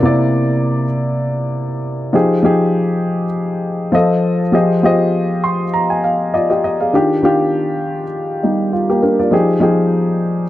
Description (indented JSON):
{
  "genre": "soul",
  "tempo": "100 BPM",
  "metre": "4/4",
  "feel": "swing 54% on 16ths",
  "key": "F dorian",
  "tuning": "A4 = 440 Hz",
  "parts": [
    { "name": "dark baby grand piano", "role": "solo", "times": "0.0-10.5 s", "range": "C3 to C6", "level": "-13 LUFS", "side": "equal", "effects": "none" }
  ],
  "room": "small room ambience",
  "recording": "dry, close 1970s-style studio recording",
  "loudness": "-13 LUFS",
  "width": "side -14 dB against mid",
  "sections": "0.0-10.5 A section",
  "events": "grand piano fill 5.1-6.9",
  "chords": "0.0 C9; 2.1 Fm9; 3.9 F7; 4.5 Fm13; 6.9 Ebmaj9; 9.3 Fm9"
}